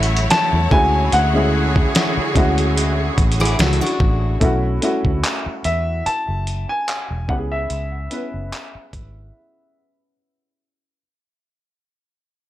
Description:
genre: contemporary R&B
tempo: 73 BPM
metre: 4/4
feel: swing 54% on 16ths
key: unclear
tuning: A4 = 439 Hz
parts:
  - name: clear baby grand piano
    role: melody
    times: 0.0-10.1 s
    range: E5 to A5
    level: -22 LUFS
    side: left 1 dB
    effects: low-pass filter, analog delay
  - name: felt-muted upright piano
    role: accompaniment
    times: 0.0-11.0 s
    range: G#3 to B4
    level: -24 LUFS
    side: left 1 dB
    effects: low-pass filter
  - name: bright symphonic string section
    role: sustained chords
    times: 0.0-4.4 s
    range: D3 to C#5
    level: -24 LUFS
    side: equal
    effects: none
  - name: vintage muted fingered electric bass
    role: bass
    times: 0.0-9.3 s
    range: E1 to E2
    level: -20 LUFS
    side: equal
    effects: none
  - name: dusty soul sampler-style drum kit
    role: drums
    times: 0.0-9.1 s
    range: handclaps, hi-hat, kick drum, rim click, snare drum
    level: -20 LUFS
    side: equal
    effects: none
  - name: picked steel-string acoustic guitar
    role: arpeggios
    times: 3.4-4.4 s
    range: D4 to A4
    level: -24 LUFS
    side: left 1 dB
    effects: low-pass filter, analog delay
room: small room ambience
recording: dry, gritty hardware recording, transformer saturation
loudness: -16 LUFS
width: side -14 dB against mid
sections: 0.0-4.4 A section; 4.4-11.0 B section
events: fade-out 4.4-11.0; break 9.3-11.0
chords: 0.0 F#m7; 0.7 Dmaj9#11; 4.4 B7sus4; 7.3 C#m7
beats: 0.30 | 1.12 1.95 2.77 3.59 | 4.41 5.23 6.05 6.88 | 7.70 8.52 9.34 10.16

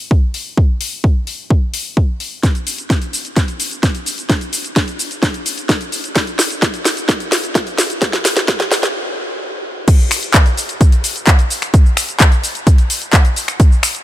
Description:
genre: EDM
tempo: 129 BPM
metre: 4/4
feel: straight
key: none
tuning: none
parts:
  - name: electronic kick drum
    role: drums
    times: 0.1-13.7 s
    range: none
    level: -12 LUFS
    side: equal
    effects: overdrive
  - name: house drum kit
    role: drums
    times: 0.3-14.0 s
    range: crash cymbal, finger snaps, handclaps, hi-hat, shaker, snare drum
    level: -17 LUFS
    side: equal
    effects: overdrive
room: light reverb, digital ambience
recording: high-pass filter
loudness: -13 LUFS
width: side -13 dB against mid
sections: 0.0-9.9 A section; 9.9-14.0 B section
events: build-up 0.0-9.9; filter sweep 0.0-9.9; drum fill 2.4-8.9; stop 8.9-9.9; drop 9.9-14.0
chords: none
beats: 0.11 | 0.57 1.04 1.50 1.97 | 2.44 2.90 3.37 3.83 | 4.30 4.76 5.23 5.69 | 6.16 6.62 7.09 7.55 | 8.02 8.48 8.95 9.41 | 9.88 10.34 10.81 11.27 | 11.74 12.20 12.67 13.13 | 13.60

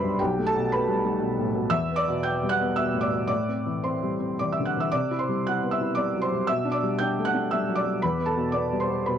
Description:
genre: neoclassical minimalist piano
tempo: 116 BPM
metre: 3/4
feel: rubato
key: G major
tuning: A4 = 440 Hz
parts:
  - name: felt-muted upright piano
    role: solo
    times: 0.0-9.2 s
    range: B1 to G6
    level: -23 LUFS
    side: equal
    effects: none
room: light reverb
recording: dry, close 1970s-style studio recording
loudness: -23 LUFS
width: side -9 dB against mid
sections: 0.0-9.2 A section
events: none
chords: 0.2 Gadd9/B; 1.7 Em7; 3.3 Am7; 4.9 Cmaj7; 6.5 Gadd9/B; 8.0 Em7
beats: | 0.19 0.70 1.21 | 1.72 2.23 2.75 | 3.29 3.84 4.38 | 4.91 5.44 5.95 | 6.46 6.98 7.50 | 8.01 8.53 9.04

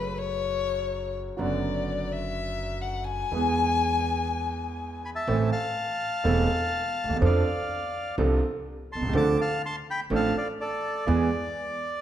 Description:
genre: tango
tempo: 124 BPM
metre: 4/4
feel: rubato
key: A minor from 5.3 s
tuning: A4 = 440 Hz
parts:
  - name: warm violin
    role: second line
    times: 0.0-5.0 s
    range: B4 to G#5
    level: -28 LUFS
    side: left 7 dB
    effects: none
  - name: clear concert grand piano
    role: accompaniment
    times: 0.0-11.3 s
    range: E1 to A4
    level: -28 LUFS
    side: right 3 dB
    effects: none
  - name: upright bass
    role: bass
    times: 0.0-11.3 s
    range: E1 to F2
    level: -30 LUFS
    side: right 1 dB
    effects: none
  - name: bandoneon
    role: melody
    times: 5.0-12.0 s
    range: A4 to D6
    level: -29 LUFS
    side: left 1 dB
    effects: none
room: wet recital hall reverb, RT60 1.7 s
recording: recorded in a church or concert hall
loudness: -24 LUFS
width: side -11 dB against mid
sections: 0.0-5.3 A section; 5.3-12.0 B section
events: violin solo 0.0-5.3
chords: 0.0 F#m; 1.4 Bm/F#; 3.3 E; 5.3 Am; 7.2 F6; 9.1 Dm7; 11.1 E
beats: 0.42 0.91 | 1.39 1.87 2.36 2.84 | 3.32 3.81 4.29 4.79 | 5.28 5.76 6.25 6.73 | 7.21 7.70 8.18 8.66 | 9.14 9.62 10.10 10.59 | 11.07 11.55

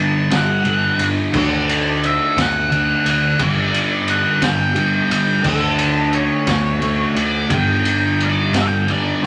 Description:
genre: psychedelic rock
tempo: 58 BPM (dotted quarters)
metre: 6/8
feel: straight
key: unclear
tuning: A4 = 441 Hz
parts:
  - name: octave-fuzz lead guitar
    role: melody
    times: 0.0-9.3 s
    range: A4 to A5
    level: -23 LUFS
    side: equal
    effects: wah, distortion
  - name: thick fuzz guitar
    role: riff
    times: 0.0-9.3 s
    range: G2 to D4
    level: -22 LUFS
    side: equal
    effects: distortion, phaser
  - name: fuzz picked electric bass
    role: bass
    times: 0.0-9.3 s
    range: G1 to D2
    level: -27 LUFS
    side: equal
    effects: overdrive
  - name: raw garage drum kit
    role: drums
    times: 0.3-9.3 s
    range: crash cymbal, kick drum, ride cymbal, snare drum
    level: -23 LUFS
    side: equal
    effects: none
room: moderate studio reverb, RT60 0.5 s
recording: none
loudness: -17 LUFS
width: mono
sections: 0.0-9.3 A section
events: none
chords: 0.0 G5; 1.3 D; 3.4 G5; 5.5 D5; 7.5 G5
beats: 0.31 | 1.34 2.37 | 3.40 4.42 | 5.45 6.48 | 7.51 8.54

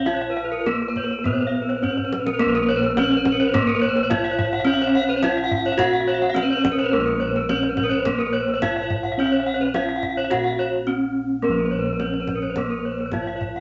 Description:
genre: Balinese gamelan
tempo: 106 BPM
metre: 4/4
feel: straight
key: Bb pelog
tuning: A4 = 442 Hz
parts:
  - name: gamelan-type bronze metallophone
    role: melody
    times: 0.0-13.6 s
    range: Bb3 to Gb4-40c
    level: -25 LUFS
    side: equal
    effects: none
  - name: gamelan-type bronze metallophone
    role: arpeggios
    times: 0.0-13.5 s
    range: Bb4 to Gb5-40c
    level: -29 LUFS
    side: equal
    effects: none
  - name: gamelan-type bossed gongs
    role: bass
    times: 0.0-13.6 s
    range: Bb1 to Bb4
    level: -30 LUFS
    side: equal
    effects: none
  - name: gamelan-type bronze metallophone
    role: arpeggios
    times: 0.1-13.6 s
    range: Bb4 to Gb5-40c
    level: -28 LUFS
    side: equal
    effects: none
  - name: kendang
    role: percussion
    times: 0.1-13.6 s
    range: none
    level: -32 LUFS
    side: equal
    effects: none
room: wet studio reverb, RT60 0.9 s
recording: nothing above 7.7 kHz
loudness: -22 LUFS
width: mono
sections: 0.0-2.4 A section; 2.4-13.6 B section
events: drum fill 2.0-2.4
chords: none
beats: | 0.05 0.65 1.25 1.83 | 2.40 2.96 3.53 4.09 | 4.66 5.22 5.79 6.35 | 6.92 7.48 8.05 8.61 | 9.18 9.74 10.31 10.87 | 11.44 12.00 12.57 13.13

